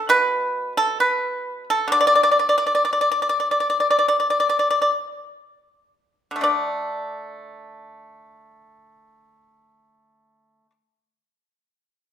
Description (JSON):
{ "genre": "chinese traditional, Chinese solo plucked strings", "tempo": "44-70 BPM", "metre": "4/4", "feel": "rubato", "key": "unclear", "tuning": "A4 = 440 Hz", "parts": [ { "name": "pipa", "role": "solo", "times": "0.0-10.7 s", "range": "B2 to D5", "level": "-18 LUFS", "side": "equal", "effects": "none" } ], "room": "light reverb", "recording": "minimal, uncompressed stereo recording", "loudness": "-18 LUFS", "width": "side -9 dB against mid", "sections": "0.0-6.4 A section; 6.4-11.5 B section", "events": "slowing down 0.0-6.4", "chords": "none", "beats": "0.10 0.99 | 1.90 2.85 3.89 5.09 | 6.42 7.72 8.97 10.21" }